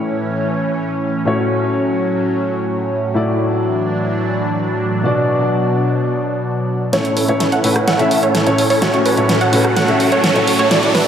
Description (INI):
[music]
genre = EDM, festival progressive house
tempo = 127 BPM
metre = 4/4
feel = straight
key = A major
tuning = A4 = 439 Hz
[part]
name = dark baby grand piano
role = accompaniment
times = 0.0-11.0 s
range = A2 to E5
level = -18 LUFS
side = left 2 dB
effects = diffuse ambient delay
[part]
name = lush unison pad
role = sustained chords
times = 0.0-11.1 s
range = A2 to D4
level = -20 LUFS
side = right 1 dB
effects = chorus, phaser
[part]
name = wide unison pluck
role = arpeggios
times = 6.9-11.1 s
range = B4 to F#5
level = -20 LUFS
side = right 2 dB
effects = diffuse ambient delay
[part]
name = supersaw chords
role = riff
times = 6.9-11.1 s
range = A3 to F#5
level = -18 LUFS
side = right 2 dB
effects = low-pass filter, diffuse ambient delay
[part]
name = big-room dance drum kit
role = drums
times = 6.9-11.0 s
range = hi-hat, rim click, snare drum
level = -20 LUFS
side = right 1 dB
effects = none
[part]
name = riser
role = sound effects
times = 9.0-11.1 s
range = none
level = -26 LUFS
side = right 1 dB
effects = none
[sound]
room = wet lush hall reverb, RT60 2.2 s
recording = dreamy mix soaked in reverb, high-pass filter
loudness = -14 LUFS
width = side -8 dB against mid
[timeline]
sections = 0.0-6.9 A section; 6.9-11.1 B section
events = build-up 6.9-11.1; drum fill 6.9-11.1; filter sweep on supersaw synth 6.9-11.1; riser 9.0-11.1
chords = 0.0 A; 1.3 F#m/A; 3.2 Dadd9/A; 5.0 Bm; 6.9 A